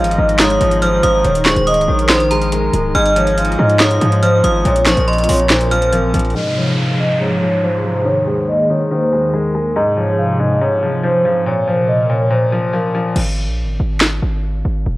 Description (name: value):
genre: hip hop, trap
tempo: 141 BPM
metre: 4/4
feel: half-time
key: Ab major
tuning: A4 = 436 Hz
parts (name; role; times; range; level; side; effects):
- vibraphone with soft mallets; melody; 0.0-13.1 s; Bb4 to F5; -17 LUFS; equal; low-pass filter
- metallic FM bell; second line; 0.0-6.3 s; Bb5 to F6; -21 LUFS; right 2 dB; chorus, tape echo
- bright baby grand piano; accompaniment; 0.0-13.2 s; Ab2 to Ab3; -20 LUFS; left 2 dB; low-pass filter
- hollow soft pad; sustained chords; 0.0-13.1 s; Eb2 to Eb5; -21 LUFS; equal; ensemble chorus, low-pass filter
- hard-hitting 808-style bass; bass; 0.0-6.3, 13.2-15.0 s; Db1 to Ab2; -17 LUFS; equal; none
- trap drum kit; drums; 0.0-6.3, 13.2-14.1 s; crash cymbal, handclaps, hi-hat, snare drum; -17 LUFS; equal; none
- downlifter; sound effects; 6.4-9.8 s; none; -27 LUFS; right 1 dB; none
room: light reverb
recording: worn, warbling old tape, cassette tape, warbly pitch drift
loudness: -12 LUFS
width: side -18 dB against mid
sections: 0.0-6.4 A section; 6.4-13.2 B section; 13.2-15.0 C section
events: filter sweep 6.4-13.2; break 13.2-15.0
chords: 0.0 Ab6; 1.2 Ebsus4; 2.9 Ab6; 4.7 Bbsus2; 6.4 Ab6; 8.1 Ebsus4; 9.8 Ab6; 11.5 Bbsus2; 13.2 N.C.